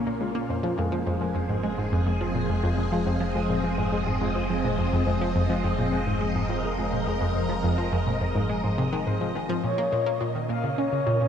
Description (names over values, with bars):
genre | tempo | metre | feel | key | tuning
ambient, sequencer-driven space music | 105 BPM | 4/4 | straight | unclear | A4 = 442 Hz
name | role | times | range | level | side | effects
phased string machine | sustained chords | 0.0-11.3 s | Bb2 to Eb5 | -29 LUFS | equal | ensemble chorus, phaser
concert harp | arpeggios | 0.0-11.3 s | Ab3 to Db5 | -33 LUFS | equal | auto-pan, ping-pong delay
round analog bass | bass | 0.0-11.3 s | F1 to Bb1 | -34 LUFS | equal | tube saturation
analog pluck | riff | 0.1-11.3 s | F2 to Db4 | -27 LUFS | equal | chorus, phaser, ping-pong delay
breathy flute-like synth lead | melody | 9.6-11.3 s | Db5 to F5 | -26 LUFS | left 3 dB | wide subtle chorus, ping-pong delay
room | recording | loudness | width
moderate lush hall reverb, RT60 2.7 s | none | -23 LUFS | side -8 dB against mid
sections
0.0-9.6 A section; 9.6-11.3 B section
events
none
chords
0.5 Fm7; 9.6 Bbm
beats
| 0.49 1.07 1.64 2.21 | 2.78 3.35 3.92 4.50 | 5.07 5.64 6.21 6.78 | 7.35 7.92 8.49 9.07 | 9.64 10.21 10.78